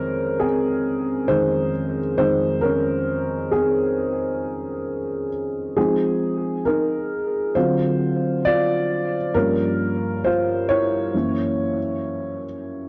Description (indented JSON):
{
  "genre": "hip hop",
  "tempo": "67 BPM",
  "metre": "4/4",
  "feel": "swing 64% on 16ths",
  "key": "F minor",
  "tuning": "A4 = 440 Hz",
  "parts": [
    { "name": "dark upright piano", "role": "solo", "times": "0.0-12.9 s", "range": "F2 to D5", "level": "-22 LUFS", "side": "equal", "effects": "cassette tape, low-pass filter, tape echo" }
  ],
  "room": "moderate spring reverb, RT60 2.4 s",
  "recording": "dark, warm production",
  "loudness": "-22 LUFS",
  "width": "mono",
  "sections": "0.0-5.8 A section; 5.8-12.9 B section",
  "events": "upright piano solo 0.0-5.8, 5.8-12.9",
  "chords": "0.0 Fm7; 7.6 D7#9; 9.3 Gm7b5; 11.1 Gb7"
}